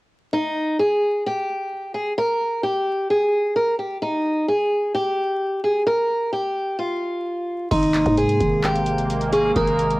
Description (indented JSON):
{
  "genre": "hip hop, trap",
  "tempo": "130 BPM",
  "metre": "4/4",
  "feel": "half-time",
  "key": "Ab major",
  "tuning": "A4 = 439 Hz",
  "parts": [
    { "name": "picked old ladder-braced acoustic guitar", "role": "melody", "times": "0.3-10.0 s", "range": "Eb4 to Bb4", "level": "-20 LUFS", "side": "equal", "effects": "cassette tape" },
    { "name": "dark detuned synth bell", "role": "second line", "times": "7.7-10.0 s", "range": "C6 to Eb6", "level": "-32 LUFS", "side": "right 5 dB", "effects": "chorus, cassette tape, tape echo" },
    { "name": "sweeping resonant pad", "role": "sustained chords", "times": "7.7-10.0 s", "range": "C3 to Bb3", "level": "-26 LUFS", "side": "right 1 dB", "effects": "chorus, cassette tape" },
    { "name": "growling 808-style bass", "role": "bass", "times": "7.7-10.0 s", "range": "Ab1 to Ab2", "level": "-23 LUFS", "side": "equal", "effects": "none" },
    { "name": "booming analog drum machine", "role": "drums", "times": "7.7-10.0 s", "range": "crash cymbal, handclaps, hi-hat, kick drum", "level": "-28 LUFS", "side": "equal", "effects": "none" }
  ],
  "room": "light reverb",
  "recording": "home recording on cassette, vinyl crackle",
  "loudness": "-19 LUFS",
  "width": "side -20 dB against mid",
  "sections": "0.3-7.7 A section; 7.7-10.0 B section",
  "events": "none",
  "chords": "0.3 N.C.; 7.7 Abadd9"
}